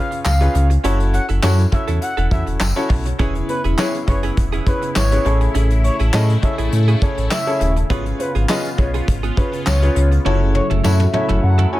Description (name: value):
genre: dance-pop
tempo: 102 BPM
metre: 4/4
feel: straight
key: unclear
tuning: A4 = 440 Hz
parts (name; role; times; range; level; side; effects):
- expressive portamento lead; melody; 0.0-11.8 s; B4 to G#5; -25 LUFS; left 1 dB; chorus, analog delay
- clear concert grand piano; accompaniment; 0.0-11.8 s; C#4 to D#5; -24 LUFS; left 2 dB; sidechain pumping, analog delay
- direct-recorded clean electric guitar; riff; 0.1-11.8 s; B3 to A4; -29 LUFS; right 7 dB; wide subtle chorus
- soft brush drum kit; drums; 0.1-11.7 s; handclaps, hi-hat, kick drum, snare drum, toms; -22 LUFS; equal; analog delay
- sub bass with octave; bass; 0.3-11.7 s; D#1 to A2; -16 LUFS; equal; sidechain pumping
- tambourine; percussion; 0.3-11.0 s; none; -32 LUFS; left 4 dB; none
- sweeping resonant pad; sustained chords; 3.2-11.8 s; C#3 to E#4; -26 LUFS; left 1 dB; chorus, sidechain pumping
room: light reverb, studio reverb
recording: echo-heavy mix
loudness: -15 LUFS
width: side -16 dB against mid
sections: 0.0-11.8 A section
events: drum fill 10.3-11.8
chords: 0.0 C#7; 0.8 F#m7; 3.2 E6; 5.3 Amaj7; 7.9 C#7/G#; 10.3 F#m7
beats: 0.25 | 0.84 1.43 2.02 2.61 | 3.19 3.78 4.37 4.96 | 5.55 6.14 6.72 7.31 | 7.90 8.49 9.08 9.66 | 10.25 10.84 11.43